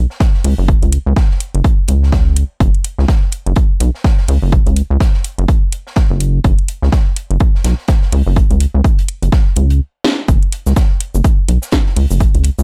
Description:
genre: minimal techno.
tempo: 125 BPM.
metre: 4/4.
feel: swing 59% on 16ths.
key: unclear.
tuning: A4 = 439 Hz.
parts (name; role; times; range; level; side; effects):
rubbery square bass; bass; 0.0-12.6 s; F#1 to C#2; -15 LUFS; equal; sidechain pumping.
open jazz drum kit; drums; 0.1-12.6 s; hi-hat, snare drum; -35 LUFS; equal; sidechain pumping on hats, high-pass filter on hats, small room ambience, high-pass filter on snare, high-pass filter on room.
electronic kick drum; drums; 0.2-12.3 s; none; -15 LUFS; equal; small room ambience.
house drum kit; drums; 0.4-12.6 s; hi-hat, shaker, snare drum; -21 LUFS; equal; small room ambience.
room: little or no reverb.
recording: none.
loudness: -14 LUFS.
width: mono.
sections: 0.0-10.3 A section; 10.3-12.6 B section.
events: stop 9.8-10.3; drum fill 10.0; band accent 10.0; drop 10.3-12.6.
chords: none.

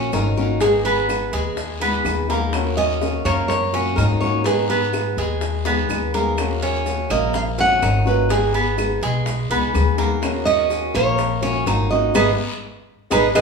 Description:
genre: latin, Cuban son and guajira.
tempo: 125 BPM.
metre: 4/4.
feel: straight.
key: Eb minor.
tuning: A4 = 437 Hz.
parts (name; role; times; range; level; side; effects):
nylon-string guitar; melody; 0.0-13.4 s; Ab4 to Gb5; -21 LUFS; right 3 dB; none.
fingerpicked old ladder-braced acoustic guitar; accompaniment; 0.0-13.4 s; Eb3 to Ab4; -25 LUFS; left 2 dB; none.
Cuban tres; arpeggios; 0.0-13.4 s; Ab3 to Eb4; -23 LUFS; right 1 dB; none.
upright bass; bass; 0.0-13.4 s; Ab1 to Ab2; -23 LUFS; left 2 dB; none.
bongos; percussion; 0.1-13.4 s; none; -31 LUFS; left 3 dB; none.
claves; percussion; 0.1-13.4 s; none; -34 LUFS; right 2 dB; none.
guiro; percussion; 0.1-13.4 s; none; -36 LUFS; left 4 dB; none.
maracas; percussion; 0.1-13.4 s; none; -41 LUFS; right 3 dB; none.
room: wet large studio reverb, RT60 1.1 s.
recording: band playing live in one room, small room reverb.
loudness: -17 LUFS.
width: side -5 dB against mid.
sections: 0.0-13.4 A section.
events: drum fill 5.7-6.4; band accent 12.1-13.4.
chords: 0.0 Ebm7; 0.6 Abm; 2.5 Ebm7; 4.5 Abm; 6.4 Ebm7; 8.3 Abm; 10.2 Ebm7; 12.1 Abm.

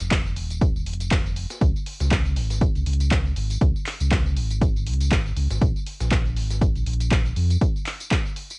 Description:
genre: deep house.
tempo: 120 BPM.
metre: 4/4.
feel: swing 56% on 16ths.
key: unclear.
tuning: A4 = 438 Hz.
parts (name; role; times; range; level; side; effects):
sub bass with octave; bass; 0.0-7.6 s; Eb1 to F2; -23 LUFS; equal; sidechain pumping.
punchy analog drum machine; drums; 0.0-8.6 s; handclaps, hi-hat, tambourine; -30 LUFS; equal; cassette tape.
breakbeat sampler-style drum kit; drums; 0.1-8.5 s; hi-hat, snare drum; -39 LUFS; equal; none.
electronic kick drum; drums; 0.1-8.2 s; none; -22 LUFS; equal; cassette tape.
room: little or no reverb.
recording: home recording on cassette.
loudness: -20 LUFS.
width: side -33 dB against mid.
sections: 0.0-8.6 A section.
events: none.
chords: none.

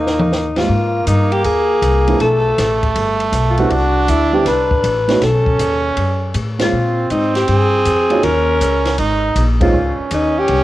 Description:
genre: jazz, small-group swing and bop.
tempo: 159 BPM.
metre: 4/4.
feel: swing 66% on 8ths.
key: unclear.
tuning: A4 = 440 Hz.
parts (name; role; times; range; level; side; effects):
growling alto saxophone; melody; 0.0-10.6 s; Eb4 to B4; -17 LUFS; left 2 dB; cassette tape.
mellow trumpet; second line; 0.0-10.6 s; A3 to Eb4; -20 LUFS; right 4 dB; cassette tape.
upright bass; bass; 0.0-10.6 s; G1 to Bb2; -18 LUFS; left 1 dB; none.
compact cocktail drum kit; drums; 0.1-10.6 s; hi-hat, kick drum, ride cymbal, snare drum, toms; -24 LUFS; left 1 dB; none.
dark baby grand piano; accompaniment; 0.6-9.7 s; Ab2 to Gb4; -20 LUFS; right 5 dB; cassette tape.
room: light reverb, small room ambience.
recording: home recording on cassette.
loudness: -13 LUFS.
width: side -15 dB against mid.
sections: 0.7-10.6 A section.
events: drum fill 0.0-0.3; band accent 0.5, 6.5, 9.6.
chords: 0.0 Eb; 0.7 Abmaj7; 2.2 Gadd9; 3.7 Cmaj7(no3); 5.2 B9; 6.7 Bb7sus2; 8.2 Eb5; 9.0 Ab69; 9.7 Dbmaj9.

